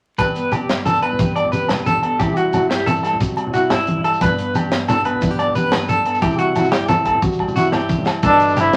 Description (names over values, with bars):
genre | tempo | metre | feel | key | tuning
highlife guitar band | 119 BPM (dotted quarters) | 12/8 | straight | G major | A4 = 440 Hz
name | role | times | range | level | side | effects
nylon-string guitar | accompaniment | 0.2-8.8 s | G2 to G4 | -27 LUFS | equal | none
electric guitar at the edge of break-up | arpeggios | 0.2-8.8 s | E4 to D5 | -21 LUFS | equal | tremolo
tight funk drum kit | drums | 0.2-8.8 s | hi-hat, kick drum, snare drum | -26 LUFS | equal | none
agogo bells | percussion | 0.2-8.7 s | none | -28 LUFS | equal | none
congas | percussion | 0.2-8.7 s | none | -26 LUFS | equal | none
shekere | percussion | 0.2-8.6 s | none | -30 LUFS | equal | none
fingered electric bass | bass | 8.2-8.7 s | G1 | -30 LUFS | equal | none
clear trumpet | melody | 8.3-8.8 s | D4 to E4 | -16 LUFS | equal | none
clear tenor saxophone | second line | 8.3-8.8 s | B2 to C3 | -28 LUFS | equal | none
room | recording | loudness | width
wet studio ambience, RT60 0.5 s | vinyl crackle | -18 LUFS | mono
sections
0.2-8.2 A section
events
drum fill 7.2-8.2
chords
0.2 Gadd9; 2.2 C; 4.2 Gadd9; 6.2 C; 8.2 Gadd9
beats
| 0.19 0.69 1.19 1.70 | 2.20 2.70 3.20 3.71 | 4.21 4.71 5.22 5.72 | 6.22 6.73 7.23 7.73 | 8.23 8.74